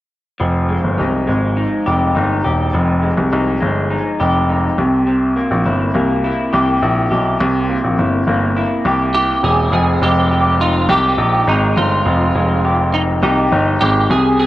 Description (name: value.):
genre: indie pop.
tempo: 103 BPM.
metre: 4/4.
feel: straight.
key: F minor.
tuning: A4 = 439 Hz.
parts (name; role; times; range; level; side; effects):
electric guitar through a small old amp; accompaniment; 0.4-14.5 s; C3 to G4; -18 LUFS; left 1 dB; lush chorus, vibrato effect.
clear baby grand piano; bass; 0.4-14.5 s; E1 to C2; -16 LUFS; equal; transformer saturation.
clean electric guitar; melody; 9.1-14.5 s; Eb4 to Ab4; -17 LUFS; right 2 dB; ensemble chorus.
room: light reverb, small room ambience.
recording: dry, gritty hardware recording.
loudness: -13 LUFS.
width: side -15 dB against mid.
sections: 0.4-9.7 A section; 9.7-14.5 B section.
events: none.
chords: 0.4 Fm9; 4.8 C7; 9.7 Fm9.